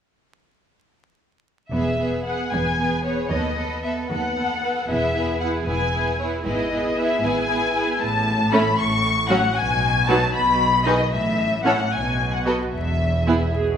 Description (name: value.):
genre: quick classical-period movement for string orchestra.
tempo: 76 BPM (dotted quarters).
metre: 6/8.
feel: straight.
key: E major.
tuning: A4 = 439 Hz.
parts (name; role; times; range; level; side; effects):
warm studio violin section; melody; 1.7-13.5 s; C#5 to C#6; -22 LUFS; left 3 dB; none.
rich chamber violin section; second line; 1.7-13.4 s; E4 to C#5; -27 LUFS; left 1 dB; none.
rich symphonic viola section; accompaniment; 1.7-13.8 s; D#3 to G#4; -26 LUFS; right 3 dB; none.
rich chamber cello section; bass; 1.7-13.8 s; D#2 to B2; -27 LUFS; equal; none.
rich chamber double bass section; bass; 1.7-13.8 s; E1 to D#2; -28 LUFS; right 1 dB; none.
room: wet concert hall reverb, RT60 2.1 s.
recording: minimal, uncompressed stereo recording, vinyl crackle.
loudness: -19 LUFS.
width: side -8 dB against mid.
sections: 1.7-13.8 A section.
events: none.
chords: 1.7 E; 3.3 B7/D#; 4.9 E; 6.5 E/G#; 8.0 A; 8.8 F#m/A; 9.6 B; 10.3 G#m/B (rootless); 11.1 A; 11.9 B5; 12.7 E.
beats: | 1.72 2.52 | 3.31 4.10 | 4.89 5.67 | 6.45 7.23 | 8.01 8.78 | 9.56 10.34 | 11.12 11.92 | 12.73 13.55.